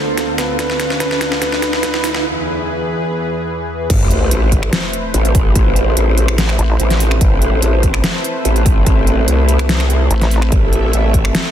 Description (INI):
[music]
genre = heavy wobble dubstep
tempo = 145 BPM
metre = 4/4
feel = half-time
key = A harmonic minor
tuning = A4 = 441 Hz
[part]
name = clear grand piano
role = melody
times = 0.0-2.2 s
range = B4 to C5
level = -23 LUFS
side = right 1 dB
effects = digital delay
[part]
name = lush unison pad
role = sustained chords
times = 0.0-11.5 s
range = D2 to E5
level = -21 LUFS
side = left 1 dB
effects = chorus, sidechain pumping
[part]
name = riser and sub drop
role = sound effects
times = 0.0-5.6 s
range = none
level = -22 LUFS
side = right 1 dB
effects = none
[part]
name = warbly tape-like pad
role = texture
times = 0.0-11.5 s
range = C4 to C6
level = -27 LUFS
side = right 4 dB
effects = chorus, built-in reverb, sidechain pumping
[part]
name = dubstep drum kit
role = drums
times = 0.2-11.4 s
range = crash cymbal, finger snaps, hi-hat, snare drum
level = -20 LUFS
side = equal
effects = high-pass filter on snare, high-pass filter on hats, high-pass filter on cymbals
[part]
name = growl bass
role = bass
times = 3.9-11.3 s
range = A1 to C2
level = -14 LUFS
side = equal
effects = chorus, overdrive
[part]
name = electronic kick drum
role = drums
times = 3.9-11.2 s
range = none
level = -14 LUFS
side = equal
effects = none
[part]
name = vowel-sweep wobble bass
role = bass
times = 6.6-6.8, 10.1-10.5 s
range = A1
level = -14 LUFS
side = equal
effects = chorus, overdrive
[sound]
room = little or no reverb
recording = dense, heavily limited modern master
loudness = -12 LUFS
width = side -10 dB against mid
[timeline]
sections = 0.0-3.9 A section; 3.9-11.5 B section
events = build-up 0.0-3.9; drum fill 0.0-2.2; riser 0.0-2.2; break 2.2-3.9; drop 3.9-11.5; impact 3.9-5.6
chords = 0.0 Dm; 0.6 Bdim/D; 2.2 E; 3.9 Amadd9